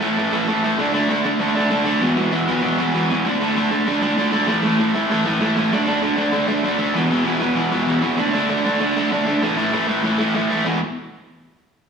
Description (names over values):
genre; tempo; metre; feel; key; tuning
punk; 194 BPM; 4/4; straight; unclear; A4 = 438 Hz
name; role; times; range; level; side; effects
overdriven electric guitar; solo; 0.0-10.8 s; E2 to D4; -17 LUFS; equal; none
room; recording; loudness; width
wet stone room reverb, RT60 1.3 s; rough rehearsal-room recording, warm saturation, small room reverb; -17 LUFS; side -6 dB against mid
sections
0.0-8.2 A section; 8.2-10.7 B section; 10.7-11.9 C section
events
none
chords
0.0 A5; 0.8 D5; 2.0 E5; 3.2 D5; 4.5 A5; 5.7 D5; 6.9 E5; 8.2 D5; 9.4 A5; 10.7 E5